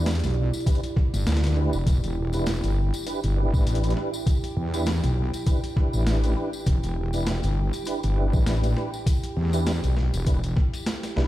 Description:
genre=glitch hop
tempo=100 BPM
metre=4/4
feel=swing 57% on 16ths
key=E minor pentatonic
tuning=A4 = 442 Hz
part: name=dark analog pad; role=sustained chords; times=0.0-11.3 s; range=E4 to G5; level=-34 LUFS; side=right 2 dB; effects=lush chorus, sidechain pumping
part: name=mellow tonewheel organ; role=stabs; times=0.0-11.3 s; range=D4 to B4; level=-32 LUFS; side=right 2 dB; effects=chorus vibrato, slow rotary speaker, sidechain pumping, ping-pong delay
part: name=wobble bass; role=bass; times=0.0-11.3 s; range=E1 to E2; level=-23 LUFS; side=equal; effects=chorus, overdrive
part: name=boom bap sampler-style drum kit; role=drums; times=0.1-11.3 s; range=hi-hat, snare drum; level=-32 LUFS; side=equal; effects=overdrive
part: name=tambourine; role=percussion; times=0.1-11.1 s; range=none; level=-41 LUFS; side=left 3 dB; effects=none
part: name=electronic kick drum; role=drums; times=0.7-10.7 s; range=none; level=-22 LUFS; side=equal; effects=overdrive
room=little or no reverb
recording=played on a big sound system in a bare room, large studio reverb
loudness=-22 LUFS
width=side -15 dB against mid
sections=0.0-11.3 A section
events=drum fill 11.0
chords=0.0 Em7

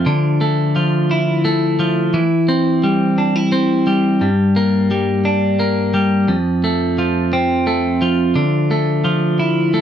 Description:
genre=pop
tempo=58 BPM (dotted quarters)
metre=6/8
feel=straight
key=unclear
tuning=A4 = 441 Hz
part: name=twelve-string electric guitar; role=solo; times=0.0-9.8 s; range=F2 to E4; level=-14 LUFS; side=equal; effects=none
room=light reverb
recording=dry, close 1970s-style studio recording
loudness=-14 LUFS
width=side -9 dB against mid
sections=0.0-9.8 A section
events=none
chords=0.1 Dmadd9; 2.1 C/E; 4.2 Gm; 6.3 F; 8.4 Dmadd9

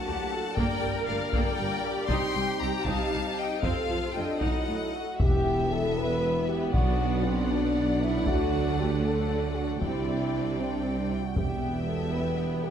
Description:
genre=cinematic, epic orchestral film score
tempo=78 BPM (dotted quarters)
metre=6/8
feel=straight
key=G minor, E minor from 5.2 s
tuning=A4 = 440 Hz
part: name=rich chamber violin section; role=melody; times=0.0-12.7 s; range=E5 to C6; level=-37 LUFS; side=left 7 dB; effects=none
part: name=warm symphonic violin section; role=second line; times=0.0-12.7 s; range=C5 to G5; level=-37 LUFS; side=left 4 dB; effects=none
part: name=rich symphonic viola section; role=accompaniment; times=0.0-12.7 s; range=D3 to Bb4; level=-35 LUFS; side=right 1 dB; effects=none
part: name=mellow French horn section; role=sustained chords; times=0.0-12.7 s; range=A3 to B4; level=-31 LUFS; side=left 2 dB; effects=none
part: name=warm trombone section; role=sustained chords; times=0.0-12.7 s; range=A2 to E4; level=-37 LUFS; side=right 3 dB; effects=none
part: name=rich symphonic cello section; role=bass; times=0.0-12.7 s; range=E2 to Bb4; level=-36 LUFS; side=right 2 dB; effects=none
part: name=rich symphonic double bass section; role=bass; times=0.1-12.7 s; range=E1 to F2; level=-34 LUFS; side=right 3 dB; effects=none
part: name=taiko ensemble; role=drums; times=0.6-11.8 s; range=none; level=-31 LUFS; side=equal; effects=none
part: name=timpani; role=percussion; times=0.6-1.3, 5.2-7.5, 11.4-12.1 s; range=E2 to B2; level=-34 LUFS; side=left 1 dB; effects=none
part: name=mellow tuba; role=bass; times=5.2-12.7 s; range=E1 to D2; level=-34 LUFS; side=right 3 dB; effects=none
part: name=impact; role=sound effects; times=5.2-6.7 s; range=none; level=-39 LUFS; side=left 1 dB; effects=none
room=moderate concert hall reverb, RT60 1.8 s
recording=none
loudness=-25 LUFS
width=side -8 dB against mid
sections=0.0-5.2 A section; 5.2-12.7 B section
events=impact 5.2-6.7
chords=0.0 D; 0.6 Gmadd9; 2.1 Cm; 3.6 F; 4.4 B7; 5.2 Em; 6.7 Bm; 8.3 D; 9.8 Cadd9; 11.4 Em

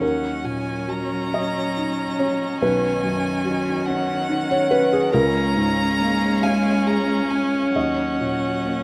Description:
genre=neoclassical piano and strings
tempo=47 BPM (dotted quarters)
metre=6/8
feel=uneven beats, rubato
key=Eb minor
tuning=A4 = 438 Hz
part: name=clear violin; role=melody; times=0.0-8.8 s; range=Gb5 to Bb5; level=-30 LUFS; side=equal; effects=none
part: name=rich cello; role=second line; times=0.0-8.8 s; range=D#3 to Ab3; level=-30 LUFS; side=equal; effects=none
part: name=felt-muted upright piano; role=accompaniment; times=0.0-8.8 s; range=B1 to F5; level=-25 LUFS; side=equal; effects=none
part: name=rich viola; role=accompaniment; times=0.0-8.8 s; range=Db4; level=-28 LUFS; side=equal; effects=none
part: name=rich chamber string section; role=sustained chords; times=0.0-8.8 s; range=Db4 to F5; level=-36 LUFS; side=equal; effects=none
room=light reverb, small room ambience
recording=rough home demo mix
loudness=-21 LUFS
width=mono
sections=0.0-8.8 A section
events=none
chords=0.0 Ebm7; 2.6 Badd9; 5.1 Bbm7/Db; 7.8 Ebm7

